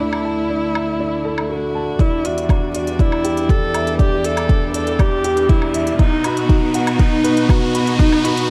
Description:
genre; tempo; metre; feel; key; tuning
piano and strings electronica; 120 BPM; 4/4; straight; E minor; A4 = 438 Hz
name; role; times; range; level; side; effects
dark viola; melody; 0.0-8.5 s; D#4 to A4; -23 LUFS; equal; none
rich string quartet; sustained chords; 0.0-8.5 s; D2 to F#4; -26 LUFS; equal; sidechain pumping
dark concert grand piano; riff; 0.0-8.5 s; D4 to B5; -24 LUFS; equal; none
electronic woodblock and hi-hat; drums; 0.1-8.5 s; none; -31 LUFS; equal; overdrive
electronic kick drum; drums; 2.0-8.1 s; none; -17 LUFS; equal; overdrive
riser; sound effects; 4.7-8.5 s; none; -33 LUFS; equal; none
room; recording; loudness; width
light reverb, studio reverb; dark, warm production; -17 LUFS; mono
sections
0.0-2.0 A section; 2.0-8.5 B section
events
build-up 2.0-8.5; riser 4.7-8.5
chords
0.0 Dsus2; 2.0 Em7; 6.0 B

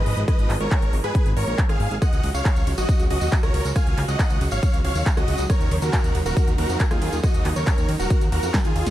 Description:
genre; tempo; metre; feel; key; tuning
uplifting trance; 138 BPM; 4/4; straight; unclear; A4 = 440 Hz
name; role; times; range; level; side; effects
big supersaw lead; melody; 0.0-8.9 s; E#4 to G#5; -27 LUFS; right 1 dB; sidechain pumping, tape echo
clear studio string section; sustained chords; 0.0-8.9 s; B2 to F#4; -32 LUFS; right 3 dB; sidechain pumping
fat analog bass; bass; 0.0-8.9 s; D#1 to G#2; -24 LUFS; equal; sidechain pumping
big-room dance drum kit; drums; 0.1-8.9 s; handclaps, hi-hat, ride cymbal, rim click, snare drum; -31 LUFS; equal; overdrive
electronic kick drum; drums; 0.3-8.6 s; none; -20 LUFS; equal; overdrive
tambourine; percussion; 2.0-8.9 s; none; -38 LUFS; left 2 dB; none
room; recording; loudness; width
little or no reverb; dark, warm production; -19 LUFS; side -14 dB against mid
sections
0.0-8.9 A section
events
drum fill 8.5-8.9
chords
0.0 G#m; 2.0 C#sus4; 5.5 D#m7

